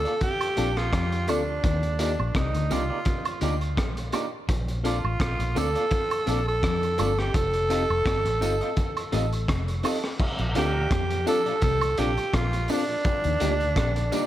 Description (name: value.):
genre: lovers rock reggae.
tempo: 84 BPM.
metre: 4/4.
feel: swing 55% on 16ths.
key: Bb major.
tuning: A4 = 440 Hz.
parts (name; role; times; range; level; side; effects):
raspy tenor saxophone; melody; 0.0-14.3 s; D4 to A4; -27 LUFS; right 1 dB; tape echo.
electric guitar through a small old amp; stabs; 0.0-14.2 s; Bb3 to Eb5; -33 LUFS; right 4 dB; warbly pitch drift.
vintage muted fingered electric bass; bass; 0.0-14.1 s; F1 to F2; -28 LUFS; equal; none.
crunchy breakbeat drum kit; drums; 0.1-14.3 s; crash cymbal, hi-hat, kick drum, rim click; -29 LUFS; equal; tape echo.
woodblock and tambourine; percussion; 0.4-14.3 s; none; -36 LUFS; right 6 dB; tape echo.
FM electric piano with tremolo; accompaniment; 0.6-14.3 s; Bb3 to A4; -33 LUFS; left 5 dB; tape echo.
electric guitar at the edge of break-up; riff; 0.6-14.0 s; F2 to F3; -37 LUFS; left 6 dB; none.
mellow tonewheel organ; accompaniment; 10.4-14.2 s; Eb2 to D4; -40 LUFS; right 3 dB; none.
room: light reverb, small room ambience.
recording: none.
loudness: -23 LUFS.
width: side -13 dB against mid.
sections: 0.0-10.2 A section; 10.2-14.3 B section.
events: none.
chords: 0.0 Bbmaj7; 1.6 Ebmaj7; 4.5 Bbmaj7; 7.3 F7; 10.2 Bbmaj7; 13.1 Ebmaj7.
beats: 0.21 0.93 | 1.64 2.35 3.07 3.78 | 4.49 5.21 5.92 6.63 | 7.35 8.06 8.77 9.49 | 10.20 10.91 11.62 12.34 | 13.05 13.76.